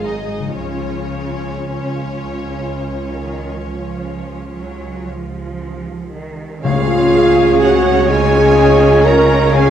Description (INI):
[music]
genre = classical, slow romantic movement for symphony orchestra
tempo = 39-43 BPM (dotted quarters)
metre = 12/8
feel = rubato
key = Db major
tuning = A4 = 439 Hz
[part]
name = rich studio violin section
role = melody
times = 0.0-9.7 s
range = Db5 to F5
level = -29 LUFS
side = left 4 dB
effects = none
[part]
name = clear studio violin section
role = second line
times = 0.0-9.7 s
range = Db4 to Bb5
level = -25 LUFS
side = left 1 dB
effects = none
[part]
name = warm studio viola section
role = accompaniment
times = 0.0-9.7 s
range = Db4 to Ab4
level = -22 LUFS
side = right 3 dB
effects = none
[part]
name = concert harp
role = arpeggios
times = 0.0-9.7 s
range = Ab2 to Ab5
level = -24 LUFS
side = left 9 dB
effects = none
[part]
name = rich studio cello section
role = bass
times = 0.0-9.7 s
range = Ab2 to Gb3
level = -24 LUFS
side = right 2 dB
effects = none
[part]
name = rich studio double bass section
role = bass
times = 0.0-9.7 s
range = Ab1 to Db2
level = -22 LUFS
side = right 3 dB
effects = none
[part]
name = cymbal swell and tam-tam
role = percussion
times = 0.6-9.7 s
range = none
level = -28 LUFS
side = equal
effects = none
[part]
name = dark clarinet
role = second line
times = 6.6-9.7 s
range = F4 to Bb4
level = -21 LUFS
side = left 1 dB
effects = none
[part]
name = warm oboe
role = second line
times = 6.6-9.7 s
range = Db5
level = -24 LUFS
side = right 4 dB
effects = none
[part]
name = dark bassoon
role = accompaniment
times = 6.6-9.7 s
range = Db4 to Eb4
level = -22 LUFS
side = right 2 dB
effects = none
[part]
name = mellow French horn section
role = sustained chords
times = 6.6-9.7 s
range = F4 to Bb4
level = -13 LUFS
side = left 1 dB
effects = none
[part]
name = timpani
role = percussion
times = 6.6-8.1 s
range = Db3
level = -25 LUFS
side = left 2 dB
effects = none
[part]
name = mellow trombone section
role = sustained chords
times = 7.6-9.2 s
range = Db3 to Db4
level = -24 LUFS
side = right 2 dB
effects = none
[part]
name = flute section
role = second line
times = 9.5-9.7 s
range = F5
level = -25 LUFS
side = left 1 dB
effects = none
[sound]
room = moderate scoring stage reverb, RT60 1.4 s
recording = worn, warbling old tape, cassette tape, warbly pitch drift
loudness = -12 LUFS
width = side -10 dB against mid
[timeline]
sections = 0.0-6.6 A section; 6.6-9.7 B section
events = band accent 6.6-7.6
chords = 0.0 Ab13; 0.6 Db